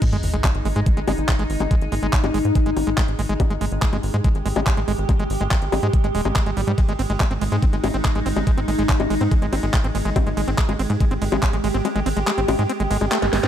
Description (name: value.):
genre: psychedelic trance.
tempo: 142 BPM.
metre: 4/4.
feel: straight.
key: unclear.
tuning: A4 = 440 Hz.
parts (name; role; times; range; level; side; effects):
evolving wavetable pad; sustained chords; 0.0-13.5 s; Ab3 to G4; -26 LUFS; equal; chorus, built-in reverb, sidechain pumping.
overdriven acid bass; riff; 0.0-13.5 s; G3 to C4; -27 LUFS; equal; distortion, auto-pan, sidechain pumping, ping-pong delay.
electronic kick drum; drums; 0.0-11.5 s; none; -19 LUFS; equal; studio reverb.
garage drum kit; drums; 0.0-13.5 s; bongos, crash cymbal, handclaps, hi-hat, ride cymbal, snare drum; -26 LUFS; left 3 dB; studio reverb.
sub drop; sound effects; 0.0-1.7 s; none; -29 LUFS; equal; none.
tight sequencer bass; bass; 0.1-13.5 s; Eb1 to Ab2; -24 LUFS; equal; none.
room: little or no reverb.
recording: none.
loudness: -18 LUFS.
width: side -10 dB against mid.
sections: 0.0-13.5 A section.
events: drop 0.0-13.5; impact 0.0-1.7; kick drops out 11.8-13.5; drum fill 13.2.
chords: 0.0 Ab5.